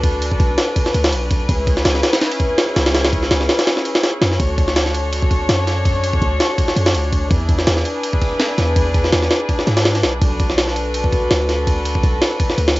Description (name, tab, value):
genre	drum and bass, jungle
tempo	165 BPM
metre	4/4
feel	swing 54% on 16ths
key	B dorian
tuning	A4 = 436 Hz
part	dark studio string section	sustained chords	0.0-12.8 s	C#4 to C#5	-21 LUFS	left 1 dB	cassette tape
part	warm 808-style bass	bass	0.0-12.8 s	B1 to G#2	-20 LUFS	equal	tube saturation
part	jungle sampler-style drum kit	drums	0.0-12.8 s	kick drum, ride cymbal, snare drum	-17 LUFS	equal	studio reverb, cassette tape
room	light reverb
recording	home recording on cassette, nothing above 7.7 kHz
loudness	-15 LUFS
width	side -19 dB against mid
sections	0.0-12.8 A section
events	none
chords	0.0 Bm7; 1.5 C#m7; 4.4 Dmaj7; 7.3 E7; 10.2 Bm7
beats	| 0.04 0.40 0.76 1.13 | 1.49 1.85 2.22 2.58 | 2.94 3.31 3.67 4.04 | 4.40 4.76 5.13 5.49 | 5.85 6.22 6.58 6.95 | 7.31 7.67 8.04 8.40 | 8.76 9.13 9.49 9.85 | 10.22 10.58 10.95 11.31 | 11.67 12.04 12.40 12.76